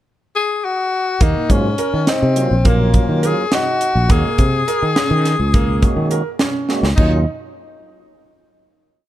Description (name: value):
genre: progressive instrumental, band music in an uneven meter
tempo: 208 BPM (eighths)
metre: 5/8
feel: straight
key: Eb dorian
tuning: A4 = 443 Hz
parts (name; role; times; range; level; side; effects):
- clear tenor saxophone; melody; 0.4-7.2 s; Bb3 to Ab4; -19 LUFS; left 4 dB; none
- clear concert grand piano; arpeggios; 1.2-7.2 s; Bb3 to Bb4; -24 LUFS; right 4 dB; none
- sustaining fretless electric bass; bass; 1.2-7.2 s; Bb1 to Eb3; -17 LUFS; equal; none
- crisp fusion drum kit; drums; 1.2-7.1 s; crash cymbal, hi-hat, kick drum, snare drum; -17 LUFS; equal; none
- tonewheel organ; accompaniment; 1.5-7.3 s; Gb3 to Gb4; -24 LUFS; right 2 dB; overdrive, fast rotary speaker
room: light reverb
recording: dark, warm production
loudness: -14 LUFS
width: side -13 dB against mid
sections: 0.0-1.2 pickup bar; 1.2-7.0 groove; 7.0-8.4 final chord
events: drum fill 6.7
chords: 0.0 N.C.; 1.2 Ebm7; 4.1 Gbadd9; 7.0 Ebm7